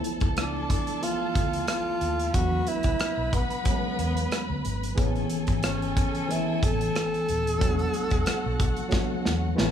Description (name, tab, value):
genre	lush 1970s-style soul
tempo	91 BPM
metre	4/4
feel	swing 54% on 16ths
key	unclear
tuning	A4 = 436 Hz
part	warm studio violin section	second line	0.0-9.7 s	F#4 to B5	-36 LUFS	equal	none
part	tine electric piano	accompaniment	0.0-9.7 s	E3 to G#4	-31 LUFS	left 1 dB	overdrive, fast stereo tremolo
part	modern studio drum kit	drums	0.0-9.7 s	hi-hat, kick drum, rim click, snare drum	-28 LUFS	equal	none
part	vintage muted fingered electric bass	bass	0.2-9.7 s	D#1 to E2	-31 LUFS	equal	none
part	breathy tenor saxophone	melody	0.4-9.6 s	B3 to A4	-30 LUFS	right 1 dB	none
part	electric guitar through a small old amp	riff	9.6-9.7 s	G#3 to E4	-40 LUFS	right 2 dB	none
room	moderate large studio reverb, RT60 1.3 s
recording	band playing live in one room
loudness	-24 LUFS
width	side -9 dB against mid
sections	0.0-9.7 A section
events	drum fill 8.9-9.7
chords	0.0 Dm6; 2.3 E9sus4; 5.0 Amaj9; 7.6 E9sus4